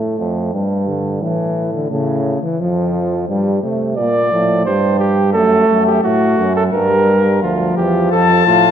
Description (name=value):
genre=classical, imitative canzona for brass ensemble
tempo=87 BPM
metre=3/4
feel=straight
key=G minor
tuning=A4 = 443 Hz
part: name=mellow trombone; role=accompaniment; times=0.0-8.7 s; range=C#3 to Bb3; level=-17 LUFS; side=left 1 dB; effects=none
part: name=warm euphonium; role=bass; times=0.0-8.7 s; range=D2 to C3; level=-19 LUFS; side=right 2 dB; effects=none
part: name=mellow flugelhorn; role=second line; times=4.0-8.7 s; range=F4 to D5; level=-15 LUFS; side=right 2 dB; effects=none
part: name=clear trumpet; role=melody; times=8.1-8.7 s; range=A5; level=-12 LUFS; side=left 14 dB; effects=none
room=moderate concert hall reverb, RT60 2.3 s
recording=dark, warm production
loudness=-13 LUFS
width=side -8 dB against mid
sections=0.0-8.7 A section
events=none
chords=0.0 F; 0.5 G5; 1.2 A; 2.6 N.C.; 3.3 Gm; 4.7 C5/G; 5.3 F#m; 6.7 Gm; 7.4 Dm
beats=0.53 | 1.22 1.91 2.60 | 3.28 3.97 4.66 | 5.34 6.04 6.73 | 7.42 8.12